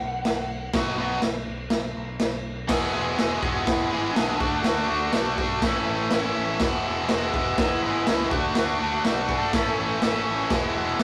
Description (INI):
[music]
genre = garage rock duo or trio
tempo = 123 BPM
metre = 4/4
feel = straight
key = E mixolydian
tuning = A4 = 445 Hz
[part]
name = overdriven slide guitar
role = melody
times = 0.0-10.2 s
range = D4 to F#5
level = -34 LUFS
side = equal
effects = none
[part]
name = growling fingered electric bass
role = bass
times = 0.0-11.0 s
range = E1 to D2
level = -38 LUFS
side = equal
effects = overdrive
[part]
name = raw garage drum kit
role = drums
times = 0.3-11.0 s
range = crash cymbal, kick drum, snare drum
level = -29 LUFS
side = equal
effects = none
[part]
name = biting overdriven guitar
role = riff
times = 0.7-11.0 s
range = E2 to G#4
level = -27 LUFS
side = equal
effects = none
[sound]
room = moderate studio reverb, RT60 0.6 s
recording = rough rehearsal-room recording, warm saturation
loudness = -25 LUFS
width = mono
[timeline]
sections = 0.0-2.7 A section; 2.7-11.0 B section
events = electric slide guitar solo 0.0-2.7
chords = 0.0 B; 2.7 E; 4.4 D; 5.6 A; 6.6 E; 8.3 D; 9.5 A; 10.5 E